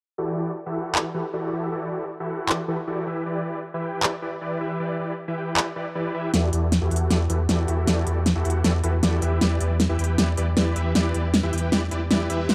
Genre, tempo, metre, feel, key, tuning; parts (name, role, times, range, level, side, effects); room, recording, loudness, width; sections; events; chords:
future bass; 156 BPM; 4/4; half-time; A4 = 443 Hz
supersaw chords; riff; 0.2-12.5 s; D3 to G5; -29 LUFS; equal; low-pass filter, dub echo
big-room dance drum kit; drums; 1.0-12.5 s; handclaps, hi-hat, snare drum; -26 LUFS; equal
saturated sub bass; bass; 6.3-12.5 s; D2 to E2; -26 LUFS; equal
light reverb; dark, warm production, high-pass filter; -24 LUFS; mono
0.2-6.3 A section; 6.3-12.5 B section
build-up 6.3-12.5; drum fill 6.3-12.5; filter sweep on supersaw synth 6.3-12.5
0.2 Em11; 3.1 Em7; 6.3 Em11; 9.2 Em7